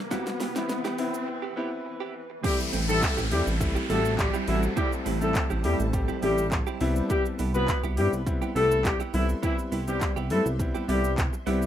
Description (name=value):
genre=dance-pop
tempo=103 BPM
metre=4/4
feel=straight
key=A minor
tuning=A4 = 440 Hz
part: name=granular cloud pad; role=sustained chords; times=0.0-11.7 s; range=C3 to C6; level=-39 LUFS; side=right 1 dB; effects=built-in reverb, sidechain pumping
part: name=riser and downlifter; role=sound effects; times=0.0-7.1 s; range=none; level=-35 LUFS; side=equal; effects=none
part: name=clear concert grand piano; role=accompaniment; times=0.1-11.7 s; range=G3 to G4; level=-32 LUFS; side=left 2 dB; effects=sidechain pumping
part: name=direct-recorded clean electric guitar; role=riff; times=0.1-11.7 s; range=B3 to G4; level=-35 LUFS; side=right 10 dB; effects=lush chorus
part: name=pop drum kit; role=drums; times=0.1-11.7 s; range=crash cymbal, handclaps, hi-hat, kick drum, shaker, snare drum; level=-30 LUFS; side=equal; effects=none
part: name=mellow horn section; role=melody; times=2.4-11.1 s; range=E3 to B4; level=-28 LUFS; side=left 2 dB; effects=sidechain pumping, digital delay
part: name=chorused synth bass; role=bass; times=2.7-11.7 s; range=A1 to G2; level=-28 LUFS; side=equal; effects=sidechain pumping
room=light reverb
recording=rough home demo mix, high-pass filter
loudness=-24 LUFS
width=side -11 dB against mid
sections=0.0-2.4 A section; 2.4-11.7 B section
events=build-up 0.0-2.4; drum fill 0.0-1.3; riser 0.0-2.4; break 1.3-2.4; drop 2.4-11.7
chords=0.0 Cmaj7; 2.4 Am7; 6.8 Cmaj7